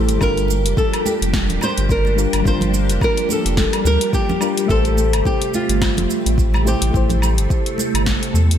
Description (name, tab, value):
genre	sunset chillout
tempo	107 BPM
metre	4/4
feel	swing 58% on 16ths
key	G dorian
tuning	A4 = 441 Hz
part	flamenco guitar	melody	0.0-8.6 s	F4 to C5	-22 LUFS	left 1 dB	ping-pong delay, slapback echo
part	mellow FM electric piano	accompaniment	0.0-8.6 s	G3 to E5	-24 LUFS	moving between left 6 dB and right 7 dB	chorus, auto-pan, ping-pong delay, slapback echo
part	soft string machine	sustained chords	0.0-8.6 s	C3 to A4	-25 LUFS	equal	phaser, ensemble chorus
part	warm sub bass	bass	0.0-8.6 s	D1 to E2	-18 LUFS	equal	tube saturation
part	deep house drum kit	drums	0.1-8.6 s	hi-hat, shaker, snare drum, woodblock	-25 LUFS	equal	overdrive
part	electronic kick drum	drums	0.2-8.2 s	none	-21 LUFS	equal	overdrive
part	congas	percussion	0.5-8.5 s	none	-29 LUFS	right 4 dB	none
room	light reverb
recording	none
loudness	-15 LUFS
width	side -9 dB against mid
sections	0.0-8.6 A section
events	none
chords	0.2 Gm7; 4.7 Am7